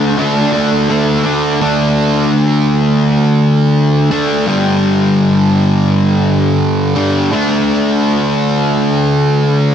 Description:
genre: rock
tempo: 84 BPM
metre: 4/4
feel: straight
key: unclear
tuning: A4 = 440 Hz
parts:
  - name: fuzz guitar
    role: solo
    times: 0.0-9.7 s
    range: G2 to D4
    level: -10 LUFS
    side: equal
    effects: distortion, wide subtle chorus, tape echo
room: moderate lush hall reverb, RT60 2.1 s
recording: dark, warm production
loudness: -10 LUFS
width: side -8 dB against mid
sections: 0.0-1.6 A section; 1.6-9.7 B section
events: none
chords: 0.0 D5; 4.5 G5; 7.3 D5

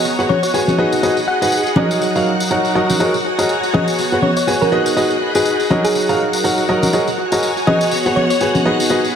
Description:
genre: piano house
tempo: 122 BPM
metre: 4/4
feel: swing 57% on 16ths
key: unclear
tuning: A4 = 440 Hz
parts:
  - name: string machine, violins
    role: sustained chords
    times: 0.0-9.2 s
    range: F#4 to F#5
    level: -23 LUFS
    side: equal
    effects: ensemble chorus
  - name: clear upright piano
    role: riff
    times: 0.0-9.0 s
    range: F#3 to G#5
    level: -17 LUFS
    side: equal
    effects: analog delay
  - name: muted studio string section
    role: texture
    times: 0.0-9.2 s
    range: F#3 to B5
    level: -22 LUFS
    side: equal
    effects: none
  - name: tambourine and congas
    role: percussion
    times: 0.1-9.1 s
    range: none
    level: -21 LUFS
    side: left 1 dB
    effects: analog delay
  - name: thumb-piano-like synth pluck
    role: melody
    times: 0.3-8.4 s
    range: G#4 to F#5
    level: -21 LUFS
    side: equal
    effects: chorus, analog delay
room: moderate plate reverb, RT60 2.6 s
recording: echo-heavy mix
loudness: -13 LUFS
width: side -8 dB against mid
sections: 0.0-9.2 A section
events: none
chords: 0.0 B69; 0.8 G#m7; 1.8 D#m7/F#; 3.0 F#69; 3.7 B69; 4.7 G#m7; 5.7 D#m7/F#; 6.9 F#69; 7.7 B69

